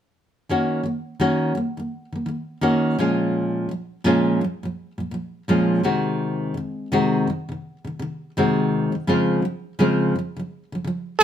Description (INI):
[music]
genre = pop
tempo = 84 BPM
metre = 4/4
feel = swing 60% on 16ths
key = unclear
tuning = A4 = 443 Hz
[part]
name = nylon-string guitar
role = accompaniment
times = 0.5-11.2 s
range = Bb2 to Gb4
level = -20 LUFS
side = equal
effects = none
[sound]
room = moderate studio reverb, RT60 0.7 s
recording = none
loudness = -20 LUFS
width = side -10 dB against mid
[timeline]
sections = 0.5-11.2 A section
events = none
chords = 0.5 Ebm7; 3.0 Bbm7; 5.8 Ab7/C; 9.1 Dbmaj7